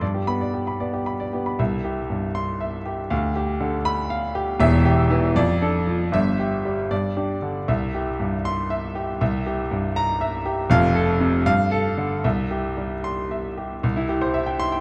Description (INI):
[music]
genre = classical, virtuoso piano study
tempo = 79 BPM (dotted quarters)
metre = 6/8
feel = rubato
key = C major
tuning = A4 = 440 Hz
[part]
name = clear grand piano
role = solo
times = 0.0-14.8 s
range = E1 to C6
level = -23 LUFS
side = equal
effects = none
[sound]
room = wet recital hall reverb, RT60 1.6 s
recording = dark, warm production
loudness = -23 LUFS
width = mono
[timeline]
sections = 0.0-1.6 A section; 1.6-13.8 B section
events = none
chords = 0.0 G; 1.6 C; 3.1 G7/D; 4.6 Em; 5.4 Dm/F; 6.1 Em/G; 6.9 G5; 7.7 C; 9.2 C7; 10.7 F; 11.5 Gsus2; 12.2 C